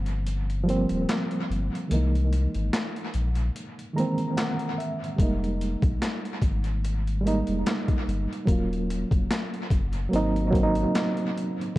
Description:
lo-fi hip hop; 73 BPM; 4/4; swing 56% on 16ths; C phrygian; A4 = 440 Hz
reed electric piano; accompaniment; 0.0-11.8 s; D#3 to Bb5; -27 LUFS; right 1 dB; overdrive, fast tremolo, cassette tape, low-pass filter, dub echo
warm sub bass; bass; 0.0-10.9 s; Eb1 to C2; -27 LUFS; equal
boom bap sampler-style drum kit; drums; 0.1-11.8 s; handclaps, hi-hat, kick drum, snare drum; -28 LUFS; left 1 dB; overdrive, dub echo
light reverb; echo-heavy mix; -24 LUFS; side -17 dB against mid
0.0-11.8 A section
break 0.0-5.2
0.0 Eb6 (rootless); 1.9 C7alt; 5.2 Fm11; 8.5 Ebm7; 10.1 Ab9

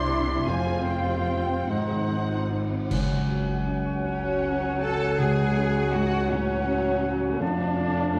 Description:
cinematic, emotional film score for orchestra; 48-55 BPM (dotted quarters); 6/8; rubato; A4 = 444 Hz
warm symphonic violin section; melody; 0.0-7.4 s; C#5 to C6; -40 LUFS; equal
hollow concert flute; second line; 0.0-8.2 s; C5 to A5; -39 LUFS; equal
mellow clarinet; second line; 0.0-8.2 s; Eb4 to F5; -39 LUFS; equal
rich symphonic violin section; second line; 0.0-7.4 s; C#5 to C6; -38 LUFS; equal
warm oboe; second line; 0.0-8.2 s; C5 to A5; -37 LUFS; equal
felt-muted upright piano; accompaniment; 0.0-8.2 s; C2 to Ab4; -33 LUFS; equal
warm symphonic viola section; accompaniment; 0.0-8.2 s; F#3 to F4; -34 LUFS; equal
concert harp; arpeggios; 0.0-8.2 s; F2 to G#5; -34 LUFS; equal
rich symphonic cello section; bass; 0.0-7.4 s; F2 to A4; -34 LUFS; equal; transformer saturation
rich symphonic double bass section; bass; 0.0-8.2 s; F1 to F2; -34 LUFS; equal; tube saturation
cymbal swell, clash cymbals and concert bass drum; percussion; 0.5-4.4 s; -39 LUFS; equal
mellow French horn section; sustained chords; 2.9-8.2 s; F#3 to F#4; -35 LUFS; equal
wet scoring stage reverb, RT60 1.7 s; worn, warbling old tape, cassette tape, warbly pitch drift; -26 LUFS; mono
0.0-2.9 A section; 2.9-8.2 B section
band accent 2.9-3.7
0.5 Fm; 1.7 Ab7; 2.9 C#sus4; 7.4 F

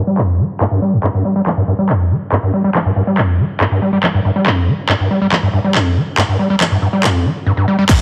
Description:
driving peak-time techno; 140 BPM; 4/4; straight; A4 = 439 Hz
overdriven acid bass; riff; 0.0-8.0 s; F2 to G3; -16 LUFS; equal; distortion, cassette tape, sidechain pumping, digital delay
techno drum kit; drums; 0.2-8.0 s; crash cymbal, handclaps, hi-hat; -21 LUFS; equal; overdrive, sidechain pumping on hats, sidechain pumping on cymbals
electronic kick drum; drums; 7.9-8.0 s; -13 LUFS; equal; overdrive
impact; sound effects; 7.9-8.0 s; -17 LUFS; equal
wet stone room reverb, RT60 1.1 s, digital ambience; heavily compressed radio sound, low-pass filter; -15 LUFS; mono
0.0-7.9 A section
filter sweep on drum 0.0-7.9; filter sweep on acid bass 0.0-7.9; filter sweep 0.0-7.9

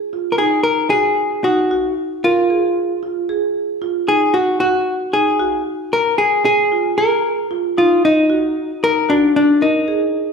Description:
progressive instrumental, progressive; 228 BPM (eighths); 7/8; straight; Eb harmonic minor; A4 = 440 Hz
hollow-body jazz guitar; melody; 0.0-10.3 s; D4 to Bb4; -15 LUFS; left 1 dB
marimba with medium hard mallets; arpeggios; 0.1-10.3 s; Eb4 to Bb4; -21 LUFS; right 3 dB
moderate large studio reverb, RT60 1.4 s; band playing live in one room; -14 LUFS; side -5 dB against mid
0.0-10.3 A section
0.4 Ebm; 2.2 N.C.; 4.1 Ebm; 5.9 Bb5; 7.8 Ebm

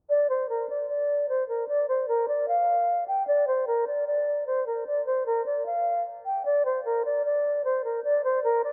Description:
hip hop; 151 BPM; 4/4; half-time; A4 = 438 Hz
breathy silver concert flute; solo; 0.1-8.7 s; Bb4 to G5; -26 LUFS; equal; digital delay
moderate lush hall reverb, RT60 3.1 s; low-pass filter, nothing above 10.7 kHz; -26 LUFS; mono
0.1-8.7 A section

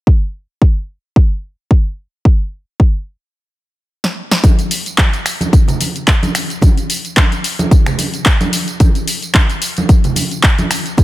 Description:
nu-disco; 110 BPM; 4/4; swing 55% on 16ths
electronic kick drum; drums; 0.1-11.0 s; -10 LUFS; equal
house drum kit; drums; 4.0-11.0 s; finger snaps, handclaps, hi-hat, snare drum, tambourine; -17 LUFS; equal
congas; percussion; 4.4-11.0 s; -20 LUFS; right 1 dB
little or no reverb; -12 LUFS; side -16 dB against mid
0.0-4.4 A section; 4.4-11.0 B section
stop 3.3-4.4; drum fill 4.0-4.4; drop 4.4-11.0

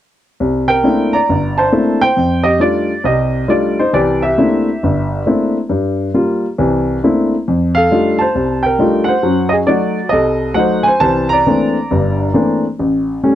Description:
solo jazz; 136 BPM; 4/4; swing 66% on 8ths; C mixolydian; A4 = 438 Hz
warm baby grand piano; solo; 0.4-13.3 s; G1 to Bb5; -12 LUFS; equal
light reverb; cassette tape; -12 LUFS; side -12 dB against mid
0.4-13.3 A section
0.4 C13; 2.2 F13; 3.9 C13; 5.7 Gm7; 6.6 C13; 7.5 F13; 9.2 F#dim7; 11.0 C13; 12.8 A7

